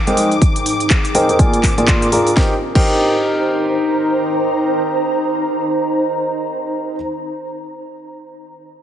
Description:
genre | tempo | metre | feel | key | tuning
piano house | 123 BPM | 4/4 | swing 59% on 16ths | C minor | A4 = 440 Hz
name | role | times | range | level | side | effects
warm studio violin section | sustained chords | 0.0-2.4 s | D6 | -25 LUFS | left 2 dB | sidechain pumping
ethereal airy pad | texture | 0.0-6.7 s | C4 to Bb5 | -20 LUFS | equal | ensemble chorus, built-in reverb, tremolo, sidechain pumping
clear concert grand piano | riff | 0.1-7.0 s | Ab3 to C6 | -18 LUFS | equal | sidechain pumping, low-pass filter, digital delay
house drum kit | drums | 0.1-2.9 s | crash cymbal, handclaps, hi-hat, snare drum | -21 LUFS | equal | none
electronic kick drum | drums | 0.4-2.9 s | none | -15 LUFS | equal | none
room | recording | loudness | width
moderate lush hall reverb, RT60 1.8 s, digital ambience | heavily compressed radio sound, nothing above 10.4 kHz | -14 LUFS | side -10 dB against mid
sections
0.0-2.4 A section; 2.4-6.3 B section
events
filter sweep on grand piano 0.0-2.4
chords
0.2 Abmaj9; 1.4 Bb7; 2.4 Cm7

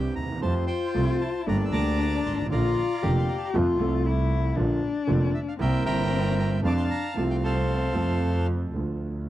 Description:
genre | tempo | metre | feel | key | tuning
tango | 115 BPM | 4/4 | rubato | F major | A4 = 440 Hz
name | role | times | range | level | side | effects
bandoneon | melody | 0.0-8.5 s | G4 to E6 | -31 LUFS | right 1 dB | none
dark cello | second line | 0.0-8.5 s | C4 to G4 | -29 LUFS | left 6 dB | none
clear concert grand piano | accompaniment | 0.0-9.3 s | F1 to A4 | -28 LUFS | right 2 dB | none
clear double bass | bass | 0.0-9.3 s | F1 to F2 | -26 LUFS | right 1 dB | none
room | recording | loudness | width
studio reverb | dry, close 1970s-style studio recording | -23 LUFS | side -14 dB against mid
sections
0.0-8.8 A section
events
none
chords
0.4 Fadd9; 1.5 Gmadd9; 2.5 Bb; 3.5 F; 4.6 Bb; 5.6 C7; 6.6 F; 8.8 Dm

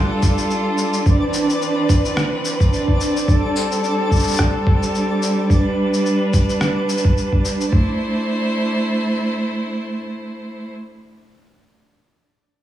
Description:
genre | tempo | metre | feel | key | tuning
folktronica | 108 BPM | 4/4 | swing 56% on 16ths | C major | A4 = 440 Hz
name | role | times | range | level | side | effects
rich string quartet | sustained chords | 0.0-10.7 s | E3 to C5 | -20 LUFS | right 1 dB | low-pass filter
twinkling granular texture | texture | 0.0-7.7 s | D4 to D5 | -24 LUFS | right 1 dB | built-in reverb
electronic kick drum | drums | 0.2-7.8 s | none | -15 LUFS | equal | overdrive
electronic shaker and rim click | drums | 0.2-7.7 s | none | -25 LUFS | left 1 dB | overdrive
room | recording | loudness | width
moderate scoring stage reverb, RT60 2.0 s | studio reverb | -16 LUFS | side -12 dB against mid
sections
0.0-7.7 A section; 7.7-9.9 B section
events
none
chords
0.0 Fadd9; 1.1 Cmaj7/E; 3.3 Am7; 5.5 G; 7.7 C6

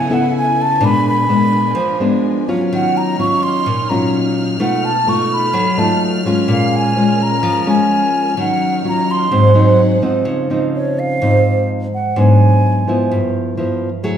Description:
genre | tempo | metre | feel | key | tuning
bossa nova | 127 BPM | 4/4 | straight | Db major | A4 = 440 Hz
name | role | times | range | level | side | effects
mellow hollow concert flute | melody | 0.0-13.1 s | Db5 to Db6 | -18 LUFS | right 1 dB | none
nylon-string guitar | accompaniment | 0.0-14.2 s | G2 to A4 | -14 LUFS | equal | none
warm symphonic string section | sustained chords | 0.0-10.3 s | Db4 to F6 | -25 LUFS | equal | none
room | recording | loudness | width
wet large studio reverb, RT60 1.4 s | band playing live in one room | -13 LUFS | side -9 dB against mid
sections
0.0-10.3 A section; 10.3-14.2 B section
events
none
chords
0.0 Gbm11; 0.8 Bb7b9; 2.7 Ebm9; 4.6 Cb7#11; 6.5 Bbm7; 8.4 Ebm9; 9.3 Ab7; 10.3 Dbmaj9; 12.2 Abm7b5; 13.1 G6

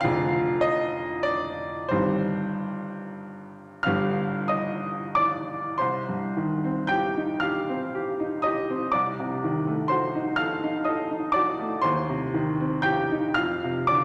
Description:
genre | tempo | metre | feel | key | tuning
classical, romantic nocturne for solo piano | 29-42 BPM (dotted quarters) | 6/8 | rubato | C minor | A4 = 440 Hz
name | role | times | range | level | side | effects
clear upright piano | solo | 0.0-14.0 s | F1 to G6 | -26 LUFS | equal | none
room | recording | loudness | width
wet concert hall reverb, RT60 1.7 s | none | -26 LUFS | mono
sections
0.0-5.8 A section; 5.8-14.0 B section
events
none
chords
0.0 Ddim/F; 1.9 Cm/G; 3.9 G; 5.8 Cm; 8.9 Cdim7; 11.8 Cm/Eb; 13.4 Dm7/F

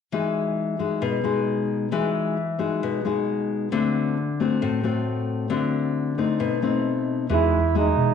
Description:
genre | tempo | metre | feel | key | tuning
bossa nova | 134 BPM | 4/4 | straight | E major | A4 = 440 Hz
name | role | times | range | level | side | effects
nylon-string guitar | accompaniment | 0.1-8.1 s | A2 to F#4 | -22 LUFS | left 4 dB | none
breathy flugelhorn | melody | 7.3-8.1 s | D#4 to E4 | -21 LUFS | right 11 dB | slapback echo
tine electric piano | bass | 7.3-8.1 s | E2 to B2 | -22 LUFS | right 3 dB | medium stereo tremolo
room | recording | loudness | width
wet echo chamber reverb, RT60 1.3 s, studio reverb | 1960s-style stereo | -22 LUFS | side -7 dB against mid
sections
0.1-7.3 A section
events
none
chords
0.1 Emaj9; 3.7 D7; 6.4 B7b9; 7.3 Emaj9

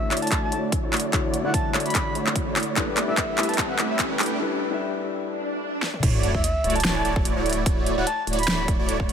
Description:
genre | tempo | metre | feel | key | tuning
future bass | 147 BPM | 4/4 | swing 55% on 16ths, half-time | D major | A4 = 438 Hz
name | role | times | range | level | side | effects
breathy flute-like synth lead | melody | 0.0-8.7 s | E5 to B5 | -30 LUFS | right 1 dB | chorus, sidechain pumping, tape echo
dark grand piano | accompaniment | 0.0-5.8 s | D3 to E5 | -30 LUFS | left 7 dB | sidechain pumping, dub echo
riser, swell and sub drop | sound effects | 0.9-7.7 s | none | -31 LUFS | equal | none
big bright polysynth | riff | 0.1-9.1 s | A3 to G5 | -27 LUFS | right 1 dB | sidechain pumping
big-room dance drum kit | drums | 0.1-9.1 s | crash cymbal, handclaps, hi-hat, snare drum, toms | -26 LUFS | equal | overdrive
electronic kick drum | drums | 0.3-9.1 s | none | -26 LUFS | equal | overdrive
saturated sub bass | bass | 6.0-9.1 s | D1 | -31 LUFS | equal | sidechain pumping
room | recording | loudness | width
light reverb | high-pass filter | -21 LUFS | side -8 dB against mid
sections
0.0-6.0 A section; 6.0-9.1 B section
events
build-up 0.0-6.0; drum fill 0.0-4.4, 5.8; filter sweep on analog polysynth 0.0-6.0; riser 0.9-4.4; break 4.4-6.0; swell 5.3-6.0; drop 6.0-9.1; impact 6.0-7.7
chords
0.0 Dmaj9; 2.8 G69; 5.8 N.C.; 6.0 Dmaj9

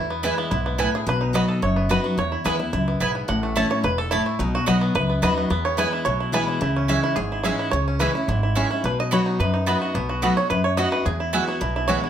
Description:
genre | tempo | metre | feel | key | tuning
bluegrass | 216 BPM | 4/4 | straight | E major | A4 = 440 Hz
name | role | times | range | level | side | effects
bluegrass banjo | melody | 0.0-12.1 s | A3 to F#5 | -25 LUFS | right 2 dB | none
picked steel-string acoustic guitar | accompaniment | 0.0-12.1 s | E2 to F#4 | -24 LUFS | left 2 dB | none
upright bass | bass | 0.0-12.0 s | E1 to F#2 | -26 LUFS | equal | none
mandolin | stabs | 0.2-12.0 s | A3 to B5 | -26 LUFS | right 3 dB | none
room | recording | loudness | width
moderate studio reverb, RT60 0.8 s | none | -20 LUFS | side -9 dB against mid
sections
0.0-6.6 A section; 6.6-12.1 A section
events
five-string banjo solo 0.0-12.1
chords
0.0 E; 1.1 B; 2.2 E; 3.3 A; 4.4 B; 5.5 E; 6.6 C#m; 8.8 B; 11.1 Eadd9

